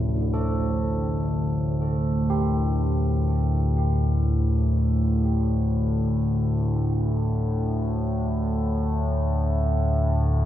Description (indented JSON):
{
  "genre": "dark ambient drone",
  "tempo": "free time",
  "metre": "none",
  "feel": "none",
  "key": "unclear",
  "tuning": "A4 = 441 Hz",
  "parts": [
    { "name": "carillon bells", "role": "arpeggios", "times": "0.0-8.2 s", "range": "A2 to A4", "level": "-31 LUFS", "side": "right 2 dB", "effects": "diffuse ambient delay" },
    { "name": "analog drone", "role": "drone", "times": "0.0-10.5 s", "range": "D2 to A2", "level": "-22 LUFS", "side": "equal", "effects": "chorus" }
  ],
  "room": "light reverb, small room ambience",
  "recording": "none",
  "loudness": "-21 LUFS",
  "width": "side -12 dB against mid",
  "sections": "0.0-10.5 A section",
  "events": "none",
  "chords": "0.0 D5"
}